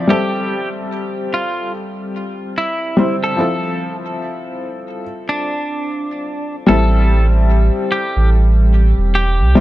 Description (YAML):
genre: trip hop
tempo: 73 BPM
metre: 4/4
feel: swing 60% on 16ths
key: A minor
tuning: A4 = 440 Hz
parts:
  - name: bright upright piano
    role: accompaniment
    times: 0.0-9.6 s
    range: F3 to E5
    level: -19 LUFS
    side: left 2 dB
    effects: tremolo
  - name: clean electric guitar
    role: melody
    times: 0.1-9.6 s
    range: D4 to A4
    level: -22 LUFS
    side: equal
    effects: tape echo
  - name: warm sub bass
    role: bass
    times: 6.7-9.6 s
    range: E1 to C2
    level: -12 LUFS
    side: right 1 dB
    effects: tube saturation
room: studio ambience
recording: none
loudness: -15 LUFS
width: side -15 dB against mid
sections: 0.0-6.7 A section; 6.7-9.6 B section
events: none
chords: 0.1 Am7; 3.4 Fmaj7; 6.7 Am7